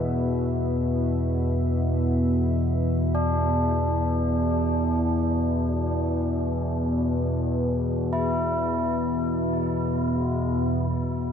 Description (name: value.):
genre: dark ambient drone.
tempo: free time.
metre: none.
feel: none.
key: unclear.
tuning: A4 = 440 Hz.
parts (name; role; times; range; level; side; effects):
dark analog pad; sustained chords; 0.0-10.9 s; B3 to E5; -35 LUFS; equal; chorus.
analog drone; drone; 0.0-11.3 s; E2 to B2; -23 LUFS; equal; chorus.
tubular bells; arpeggios; 3.1-11.3 s; D4 to E4; -30 LUFS; left 1 dB; tape echo.
room: moderate huge ambient reverb, RT60 8.9 s.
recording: none.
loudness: -22 LUFS.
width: side -8 dB against mid.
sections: 0.0-10.9 A section.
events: fade-out on analog synth pad 0.0-10.9.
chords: 0.0 E5.